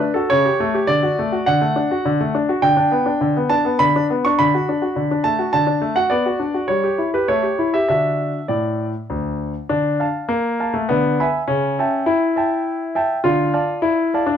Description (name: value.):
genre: classical-period piano sonatina.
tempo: 102 BPM.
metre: 3/4.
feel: straight.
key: D major, D minor from 9.7 s.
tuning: A4 = 440 Hz.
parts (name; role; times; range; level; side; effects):
bright concert grand piano; solo; 0.0-14.4 s; D2 to C#6; -16 LUFS; equal; none.
room: moderate large studio reverb, RT60 1.1 s.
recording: dark, warm production.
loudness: -16 LUFS.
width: side -8 dB against mid.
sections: 0.0-9.7 A section; 9.7-14.4 B section.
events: none.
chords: 0.3 A7/C#; 0.9 D; 2.6 G/D; 4.4 D; 6.1 Bm; 6.7 Em/G; 7.3 A7; 7.9 D; 9.7 Dm; 10.9 E7/D; 11.5 A7/C#; 13.3 Dm.